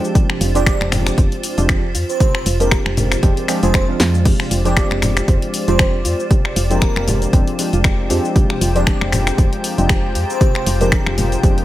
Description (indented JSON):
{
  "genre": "deep house",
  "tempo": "117 BPM",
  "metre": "4/4",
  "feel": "swing 56% on 16ths",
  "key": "F dorian",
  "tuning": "A4 = 440 Hz",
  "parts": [
    { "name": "warm analog keys", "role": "stabs", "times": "0.0-11.6 s", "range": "F3 to Ab4", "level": "-22 LUFS", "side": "equal", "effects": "chorus, sidechain pumping, digital delay" },
    { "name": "punchy analog drum machine", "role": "drums", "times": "0.0-11.6 s", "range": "cabasa, crash cymbal, finger snaps, hi-hat, snare drum", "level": "-22 LUFS", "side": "left 2 dB", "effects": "overdrive" },
    { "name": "granular cloud pad", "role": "texture", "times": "0.0-11.6 s", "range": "F4 to Bb5", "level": "-29 LUFS", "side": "equal", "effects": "built-in reverb, sidechain pumping" },
    { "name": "congas", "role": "percussion", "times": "0.1-11.3 s", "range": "none", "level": "-26 LUFS", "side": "left 1 dB", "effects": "none" },
    { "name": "soft round pluck", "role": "arpeggios", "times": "0.2-11.5 s", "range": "F4 to C5", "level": "-29 LUFS", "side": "right 4 dB", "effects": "chorus, sidechain pumping, tape echo" },
    { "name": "electronic kick drum", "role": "drums", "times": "0.2-11.5 s", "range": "none", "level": "-15 LUFS", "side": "equal", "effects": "overdrive" },
    { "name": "woody FM bass", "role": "bass", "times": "0.4-11.6 s", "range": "F1 to F2", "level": "-19 LUFS", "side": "equal", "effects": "sidechain pumping" },
    { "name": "airy dreamy lead", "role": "melody", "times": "0.6-11.0 s", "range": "Bb4 to D5", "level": "-25 LUFS", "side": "right 2 dB", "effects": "chorus, tape echo" },
    { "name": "warm analog pad", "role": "sustained chords", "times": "4.3-11.6 s", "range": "Ab3 to G5", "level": "-28 LUFS", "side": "left 2 dB", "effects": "chorus, vintage 12-bit sampler grit, sidechain pumping" }
  ],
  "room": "digital ambience",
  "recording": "none",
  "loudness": "-14 LUFS",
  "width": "side -14 dB against mid",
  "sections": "0.0-11.6 A section",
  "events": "drum fill 4.0",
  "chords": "0.0 Fm69",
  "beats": "| 0.15 0.67 1.18 1.69 | 2.20 2.72 3.23 3.74 | 4.25 4.77 5.28 5.79 | 6.31 6.82 7.33 7.84 | 8.36 8.87 9.38 9.90 | 10.41 10.92 11.43"
}